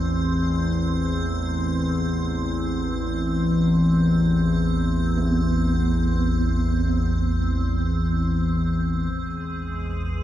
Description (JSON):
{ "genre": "ambient", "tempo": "free time", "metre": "none", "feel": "none", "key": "A harmonic minor", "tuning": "A4 = 441 Hz", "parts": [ { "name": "analog drone", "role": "drone", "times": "0.0-10.2 s", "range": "A1 to E2", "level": "-21 LUFS", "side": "equal", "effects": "chorus" }, { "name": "icy glass pad", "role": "texture", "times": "0.0-10.2 s", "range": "G#3 to C6", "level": "-29 LUFS", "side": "right 1 dB", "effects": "chorus, built-in reverb" }, { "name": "gamelan-type bronze metallophone", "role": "arpeggios", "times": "5.2-10.2 s", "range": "B3", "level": "-30 LUFS", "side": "right 3 dB", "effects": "diffuse ambient delay" }, { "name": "dark analog pad", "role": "sustained chords", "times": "9.1-10.2 s", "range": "B3 to B4", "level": "-44 LUFS", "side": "right 2 dB", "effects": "none" } ], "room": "wet cathedral reverb, RT60 5.8 s", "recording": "dark, warm production", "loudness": "-20 LUFS", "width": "side -12 dB against mid", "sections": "0.0-9.1 A section; 9.1-10.2 B section", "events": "filter sweep on synth drone 9.1-10.2", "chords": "0.1 Amadd9" }